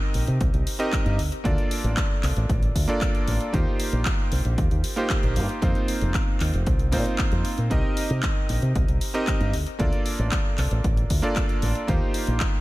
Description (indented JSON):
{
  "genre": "nu-disco, nu disco",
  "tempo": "115 BPM",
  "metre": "4/4",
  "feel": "straight",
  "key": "unclear",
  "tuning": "A4 = 438 Hz",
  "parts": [
    { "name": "bright electric grand piano", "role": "accompaniment", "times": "0.0-12.6 s", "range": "Bb3 to Eb5", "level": "-28 LUFS", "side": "right 1 dB", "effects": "sidechain pumping, ping-pong delay" },
    { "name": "fingered electric bass with an envelope filter", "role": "bass", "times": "0.1-12.4 s", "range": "F1 to C3", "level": "-24 LUFS", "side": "equal", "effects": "none" },
    { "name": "house drum kit", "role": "drums", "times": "0.1-12.5 s", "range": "handclaps, hi-hat", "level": "-32 LUFS", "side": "left 1 dB", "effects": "studio ambience" },
    { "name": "electronic kick drum", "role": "drums", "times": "0.4-12.5 s", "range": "none", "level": "-25 LUFS", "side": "equal", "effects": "studio ambience" }
  ],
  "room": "little or no reverb",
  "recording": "none",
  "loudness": "-21 LUFS",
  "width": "side -18 dB against mid",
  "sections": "0.0-12.6 A section",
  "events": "none",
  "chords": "0.0 Cm7; 1.2 Bbmaj7; 3.5 Eb69; 5.6 F7sus4; 7.7 Cm7; 9.5 Bbmaj7; 11.9 Eb69",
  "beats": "0.41 0.93 | 1.45 1.97 2.49 3.02 | 3.54 4.06 4.58 5.10 | 5.62 6.15 6.67 7.19 | 7.71 8.23 8.76 9.28 | 9.80 10.32 10.84 11.36 | 11.88 12.41"
}